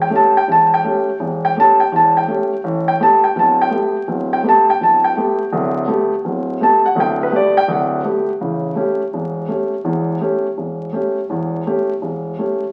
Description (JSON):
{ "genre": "jazz", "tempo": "166 BPM", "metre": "4/4", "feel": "swing 65% on 8ths", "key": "A mixolydian", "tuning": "A4 = 440 Hz", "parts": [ { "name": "warm concert grand piano", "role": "solo", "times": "0.0-12.6 s", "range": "D1 to A5", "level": "-16 LUFS", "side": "equal", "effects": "none" } ], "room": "moderate large studio reverb, RT60 1.2 s", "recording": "very old 78 rpm record, vinyl crackle, nothing above 10.7 kHz", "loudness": "-16 LUFS", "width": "mono", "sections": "0.0-8.4 A section; 8.4-12.7 B section", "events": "none", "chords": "0.0 A7; 2.6 Gadd9; 8.4 A7" }